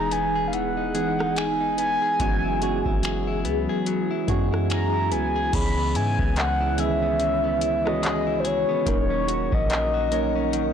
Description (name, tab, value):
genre	contemporary R&B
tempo	72 BPM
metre	4/4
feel	swing 58% on 16ths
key	unclear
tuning	A4 = 440 Hz
part	mellow horn-like synth lead	melody	0.0-10.7 s	B#4 to B5	-25 LUFS	left 1 dB	chorus
part	tine electric piano	accompaniment	0.0-10.7 s	D#3 to C#5	-28 LUFS	right 5 dB	overdrive, wide subtle chorus
part	glassy FM pad	sustained chords	0.0-10.7 s	E3 to C#6	-31 LUFS	left 3 dB	ensemble chorus, built-in reverb, phaser
part	direct-recorded clean electric guitar	arpeggios	0.0-10.7 s	C#3 to A#4	-31 LUFS	left 6 dB	tape echo
part	soft 808-style bass	bass	0.0-10.7 s	D#1 to G#2	-29 LUFS	equal	none
part	booming analog drum machine	drums	0.1-10.7 s	crash cymbal, finger snaps, handclaps, hi-hat, kick drum, rim click	-29 LUFS	equal	soft clipping on snare
room	light reverb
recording	blown-out, overdriven recording, overdrive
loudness	-21 LUFS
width	side -8 dB against mid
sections	0.0-5.5 A section; 5.5-10.7 B section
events	none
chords	0.0 Emaj7; 2.2 F#9sus4; 5.5 C#m7; 8.9 D#m7